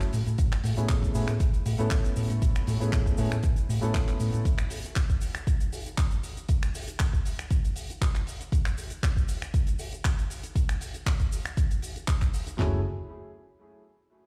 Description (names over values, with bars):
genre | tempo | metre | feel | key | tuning
nu-disco, nu disco | 118 BPM | 4/4 | straight | unclear | A4 = 440 Hz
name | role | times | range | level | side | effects
warm baby grand piano | accompaniment | 0.0-4.4, 12.6-12.8 s | F#3 to A4 | -36 LUFS | equal | sidechain pumping, tape echo
damped 70s drum kit | drums | 0.0-12.6 s | finger snaps, handclaps, hi-hat, shaker | -39 LUFS | equal | none
hollow-body short-scale fingered electric bass | bass | 0.1-4.4, 12.6-12.8 s | F#1 to A2 | -30 LUFS | equal | none
pop drum kit | drums | 0.4-12.7 s | handclaps, kick drum, snare drum, toms | -28 LUFS | equal | none
room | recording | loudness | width
small room ambience | played on a big sound system in a bare room, stone room reverb | -28 LUFS | mono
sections
0.0-12.6 A section; 12.6-14.3 B section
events
none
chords
0.1 Amaj7; 4.5 N.C.; 12.6 F#m7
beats
| 0.39 0.89 1.40 1.91 | 2.42 2.93 3.44 3.94 | 4.45 4.96 5.47 5.98 | 6.49 7.00 7.50 8.01 | 8.52 9.03 9.54 10.05 | 10.55 11.06 11.57 12.08 | 12.59